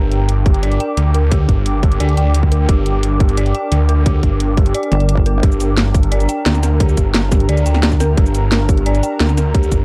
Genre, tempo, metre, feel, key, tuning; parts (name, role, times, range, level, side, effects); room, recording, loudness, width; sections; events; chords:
dark technical drum and bass; 175 BPM; 4/4; straight; G minor; A4 = 440 Hz
snarling distorted saw bass; bass; 0.0-9.8 s; G1 to D2; -17 LUFS; equal; distortion, tube saturation
airy breathy pad; texture; 0.0-9.8 s; D4 to D6; -26 LUFS; equal; chorus, sidechain pumping
drum and bass drum kit; drums; 0.1-9.8 s; cabasa, hi-hat, snare drum; -23 LUFS; equal; overdrive
dark detuned synth bell; arpeggios; 0.5-9.6 s; G4 to G5; -26 LUFS; equal; chorus, phaser, sidechain pumping, digital delay
electronic kick drum; drums; 0.5-9.8 s; -16 LUFS; equal; overdrive
pulsing pluck wobble bass; bass; 4.9-5.4 s; G1; -16 LUFS; equal; chorus
little or no reverb; dark, warm production; -15 LUFS; mono
0.0-9.8 A section
0.0 Gm